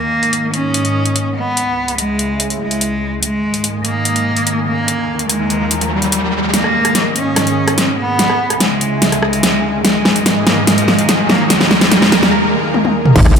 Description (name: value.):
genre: heavy wobble dubstep.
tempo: 145 BPM.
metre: 4/4.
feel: half-time.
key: unclear.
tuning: A4 = 439 Hz.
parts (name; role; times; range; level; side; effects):
rich cello; melody; 0.0-12.3 s; G3 to C#4; -17 LUFS; equal; vintage 12-bit sampler grit, ping-pong delay.
lush unison pad; sustained chords; 0.0-13.4 s; C#2 to G#5; -20 LUFS; equal; chorus, phaser, sidechain pumping.
big-room dance drum kit; drums; 0.2-13.4 s; crash cymbal, hi-hat, rim click, snare drum, toms; -14 LUFS; equal; none.
riser and impact; sound effects; 4.3-13.4 s; none; -20 LUFS; equal; none.
metallic wobble bass; bass; 13.2-13.4 s; G#1; -11 LUFS; equal; distortion, chorus, overdrive.
electronic kick drum; drums; 13.2 s; none; -12 LUFS; equal; none.
room: moderate lush hall reverb, RT60 1.7 s, digital ambience.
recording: none.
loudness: -12 LUFS.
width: side -6 dB against mid.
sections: 0.0-6.5 A section; 6.5-13.2 B section.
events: filter sweep on analog synth pad 0.0-6.5; riser 4.3-6.5, 6.5-12.3; build-up 6.5-13.2; drum fill 6.5-12.3, 12.7-13.2; break 12.3-13.2; impact 13.2.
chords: 0.0 G#sus2; 1.6 C#m; 3.2 G#sus2; 4.9 D#sus4; 6.5 G#sus2; 8.2 C#m; 9.8 G#sus2; 11.5 D#sus4.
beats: 0.33 0.74 1.16 | 1.57 1.98 2.40 2.81 | 3.23 3.64 4.05 4.47 | 4.88 5.29 5.71 6.12 | 6.54 6.95 7.36 7.78 | 8.19 8.61 9.02 9.43 | 9.85 10.26 10.67 11.09 | 11.50 11.91 12.33 12.74 | 13.16.